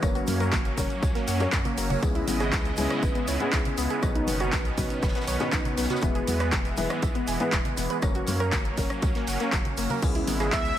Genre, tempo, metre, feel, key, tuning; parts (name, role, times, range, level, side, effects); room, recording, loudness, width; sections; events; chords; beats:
progressive house; 120 BPM; 4/4; straight; A4 = 440 Hz
filtered supersaw swell; sustained chords; 0.0-10.8 s; C#3 to D#5; -32 LUFS; right 2 dB; sidechain pumping
soft round pluck; arpeggios; 0.0-10.6 s; A#3 to G#5; -32 LUFS; equal; chorus, sidechain pumping, digital delay
felt-muted upright piano; stabs; 0.0-10.7 s; B2 to C#5; -32 LUFS; left 3 dB; sidechain pumping, digital delay
saturated sub bass; bass; 0.0-10.7 s; E1 to F#2; -31 LUFS; equal; sidechain pumping
electronic kick drum; drums; 0.0-10.6 s; -27 LUFS; equal; overdrive
house drum kit; drums; 0.0-10.8 s; crash cymbal, handclaps, hi-hat, rim click; -32 LUFS; equal; overdrive
modern studio drum kit; drums; 0.0-10.6 s; hi-hat, snare drum, tambourine; -42 LUFS; equal; sidechain pumping on hats, high-pass filter on hats, high-pass filter on snare, sidechain pumping on perc, high-pass filter on perc, high-pass filter on room
tube shaker; percussion; 0.0-10.8 s; -42 LUFS; left 4 dB
congas; percussion; 0.3-10.4 s; -36 LUFS; left 3 dB; sidechain pumping on perc
wide unison lead; melody; 10.5-10.8 s; E5; -27 LUFS; equal; sidechain pumping
soft synth bell; second line; 10.5-10.8 s; E6; -32 LUFS; right 4 dB; chorus, phaser, sidechain pumping
light reverb, studio reverb; -23 LUFS; side -11 dB against mid
0.0-10.8 A section
0.0 F#; 2.0 C#m7; 4.0 Badd9; 6.0 E; 8.0 F#; 10.0 C#m7
| 0.03 0.53 1.03 1.53 | 2.03 2.53 3.03 3.53 | 4.03 4.53 5.03 5.53 | 6.03 6.53 7.03 7.53 | 8.03 8.53 9.03 9.53 | 10.03 10.53